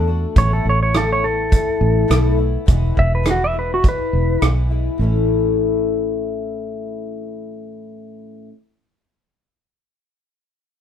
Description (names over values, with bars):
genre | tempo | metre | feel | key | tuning
folk rock and heartland rock | 104 BPM | 4/4 | straight | A major | A4 = 440 Hz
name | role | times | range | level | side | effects
picked twelve-string acoustic guitar | accompaniment | 0.0-8.5 s | E2 to F#4 | -23 LUFS | left 7 dB | none
fingered electric bass | bass | 0.0-8.0 s | E1 to E2 | -18 LUFS | right 1 dB | none
clean lap steel guitar | melody | 0.4-4.4 s | F#4 to E5 | -20 LUFS | right 1 dB | none
natural country drum kit | drums | 0.4-4.6 s | hi-hat, kick drum, rim click | -18 LUFS | right 1 dB | none
room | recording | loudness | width
light reverb | band playing live in one room | -15 LUFS | side -9 dB against mid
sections
0.0-5.0 A section; 5.0-7.3 B section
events
electric slide guitar solo 0.0-5.0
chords
0.4 Asus2; 2.7 E; 5.0 A